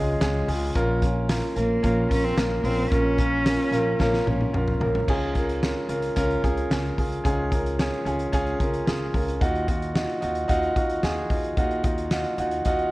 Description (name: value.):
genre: piano-driven pop.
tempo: 111 BPM.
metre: 4/4.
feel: straight.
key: unclear.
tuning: A4 = 440 Hz.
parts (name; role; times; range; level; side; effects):
dark cello; melody; 0.0-4.5 s; Ab3 to Db4; -27 LUFS; equal; none.
warm concert grand piano; accompaniment; 0.0-12.9 s; Ab2 to Bb5; -25 LUFS; equal; none.
upright bass; bass; 0.0-12.9 s; Bb1 to Eb2; -29 LUFS; equal; none.
loose indie drum kit; drums; 0.2-12.9 s; crash cymbal, hi-hat, kick drum, snare drum, toms; -27 LUFS; equal; none.
room: light reverb, studio reverb.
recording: worn, warbling old tape, cassette tape, warbly pitch drift.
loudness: -22 LUFS.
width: side -19 dB against mid.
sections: 0.0-5.1 A section; 5.1-12.9 B section.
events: drum fill 4.0-5.1; grand piano fill 4.3-5.1.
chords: 0.0 Db; 0.8 Bbm; 5.1 Db; 9.4 Ebmadd9.